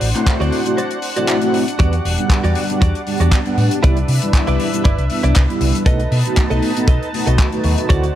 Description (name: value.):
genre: nu-disco, nu disco.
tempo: 118 BPM.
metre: 4/4.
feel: swing 54% on 16ths.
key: unclear.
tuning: A4 = 442 Hz.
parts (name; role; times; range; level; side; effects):
lush unison pad; sustained chords; 0.0-8.2 s; G3 to A5; -25 LUFS; equal; chorus, sidechain pumping.
direct-recorded clean electric guitar; riff; 0.0-8.2 s; E4 to D#5; -25 LUFS; right 3 dB; wide subtle chorus, slapback echo.
hollow-body short-scale fingered electric bass; bass; 0.0-8.1 s; E1 to C3; -17 LUFS; equal; sidechain pumping.
tight funk drum kit; drums; 0.0-8.1 s; handclaps, hi-hat; -25 LUFS; left 2 dB; none.
mellow synth brass; accompaniment; 0.1-8.0 s; G3 to F#5; -20 LUFS; equal; chorus, sidechain pumping, slapback echo.
kick drum; drums; 0.3-8.0 s; none; -14 LUFS; equal; none.
room: small room ambience.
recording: none.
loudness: -14 LUFS.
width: side -12 dB against mid.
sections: 0.0-8.2 A section.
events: none.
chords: 0.0 D7; 1.8 Em9; 3.8 Cmaj9; 5.9 B7.